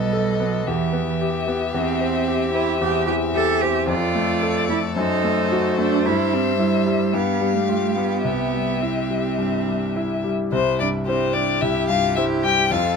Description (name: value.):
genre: quick classical-period movement for piano quartet.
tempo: 111 BPM.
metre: 4/4.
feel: straight.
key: C major.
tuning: A4 = 440 Hz.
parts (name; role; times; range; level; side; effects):
rich violin; melody; 0.0-13.0 s; C5 to G5; -25 LUFS; left 8 dB; none.
rich cello; second line; 0.0-13.0 s; E3 to A4; -24 LUFS; right 9 dB; none.
rich violin; second line; 0.0-13.0 s; E4 to C5; -30 LUFS; left 1 dB; none.
bright concert grand piano; accompaniment; 0.0-13.0 s; B1 to C5; -22 LUFS; left 2 dB; none.
room: little or no reverb.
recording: close, detailed microphones.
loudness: -18 LUFS.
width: side -5 dB against mid.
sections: 0.0-10.5 A section; 10.5-13.0 B section.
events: none.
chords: 0.0 B7; 0.7 Em; 1.7 C/E; 3.9 Dm/F; 5.0 F#dim7; 6.1 C/G; 7.1 G9; 8.3 C.